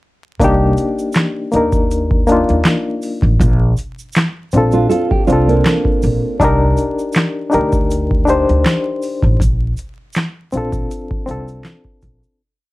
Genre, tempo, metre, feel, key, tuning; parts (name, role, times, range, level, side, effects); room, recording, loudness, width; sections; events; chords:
lo-fi hip hop; 80 BPM; 4/4; swing 56% on 16ths; C dorian; A4 = 439 Hz
barky reed electric piano; accompaniment; 0.4-12.4 s; Bb3 to C5; -16 LUFS; left 2 dB; fast tremolo, cassette tape, low-pass filter, plate reverb
upright bass; bass; 0.4-12.2 s; A1 to Eb2; -17 LUFS; equal
booming analog drum machine; drums; 0.4-12.2 s; handclaps, hi-hat, kick drum, snare drum; -17 LUFS; equal; overdrive
tube shaker; percussion; 0.4-12.4 s; -40 LUFS; right 6 dB
nylon-string guitar; second line; 4.7-6.4 s; Bb3 to A4; -17 LUFS; right 4 dB; low-pass filter, tape echo
moderate studio reverb, RT60 0.5 s; vinyl crackle; -13 LUFS; side -18 dB against mid
0.4-12.4 A section
fade-out 9.4-12.4
0.4 Cm9 (rootless); 3.4 Bbmaj9; 6.4 Cm9; 9.4 Bbmaj9